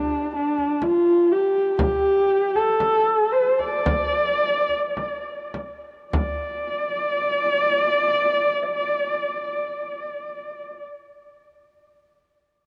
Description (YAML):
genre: mongolian traditional, Mongolian folk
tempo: 50-64 BPM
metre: 4/4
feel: straight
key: D yu mode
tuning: A4 = 440 Hz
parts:
  - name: dark horsehead fiddle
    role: melody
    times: 0.0-10.8 s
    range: D4 to D5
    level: -23 LUFS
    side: equal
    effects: none
  - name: frame drum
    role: percussion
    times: 0.6-6.7 s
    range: none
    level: -29 LUFS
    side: equal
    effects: none
room: moderate huge ambient reverb, RT60 3.9 s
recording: worn, warbling old tape, cassette tape, warbly pitch drift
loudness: -22 LUFS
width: mono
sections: 0.0-6.1 A section; 6.1-11.0 B section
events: slowing down 0.0-6.1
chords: none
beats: 0.82 | 1.80 2.81 3.86 4.96 | 6.13 7.34 8.55 9.76